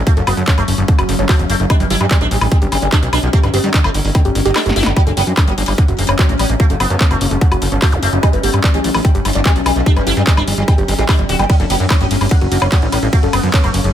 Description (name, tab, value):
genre	psychedelic trance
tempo	147 BPM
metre	4/4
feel	straight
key	F# phrygian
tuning	A4 = 441 Hz
part	evolving wavetable pad	sustained chords	0.0-13.9 s	F#3 to C#4	-22 LUFS	left 3 dB	chorus, built-in reverb, sidechain pumping
part	fat analog bass	bass	0.0-13.9 s	D1 to G2	-17 LUFS	equal	none
part	sitar	melody	0.1-13.9 s	F#2 to F#4	-21 LUFS	right 1 dB	phaser, sidechain pumping, digital delay
part	woody wave-folded pluck	riff	0.1-13.6 s	F#4 to G5	-24 LUFS	moving between left 2 dB and right 6 dB	chorus, auto-pan, vintage 12-bit sampler grit, sidechain pumping, digital delay
part	electronic kick drum	drums	0.1-13.6 s	none	-12 LUFS	equal	studio reverb
part	techno drum kit	drums	0.1-13.9 s	handclaps, hi-hat, ride cymbal, snare drum, woodblock	-20 LUFS	left 1 dB	overdrive, studio reverb
part	formant-sweep wobble bass	second line	5.2-13.9 s	E3 to C#4	-32 LUFS	left 2 dB	none
part	zap	sound effects	7.9-8.0 s	none	-26 LUFS	equal	none
room	digital ambience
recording	none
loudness	-12 LUFS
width	side -10 dB against mid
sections	0.0-13.9 A section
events	kick drops out 4.6-5.0; drum fill 4.6-5.0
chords	0.0 F#5; 1.7 G5; 5.0 F#5; 8.2 G5; 11.5 F#5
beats	| 0.07 0.47 0.88 1.29 | 1.70 2.11 2.52 2.92 | 3.33 3.74 4.15 4.56 | 4.96 5.37 5.78 6.19 | 6.60 7.01 7.41 7.82 | 8.23 8.64 9.05 9.46 | 9.86 10.27 10.68 11.09 | 11.50 11.90 12.31 12.72 | 13.13 13.54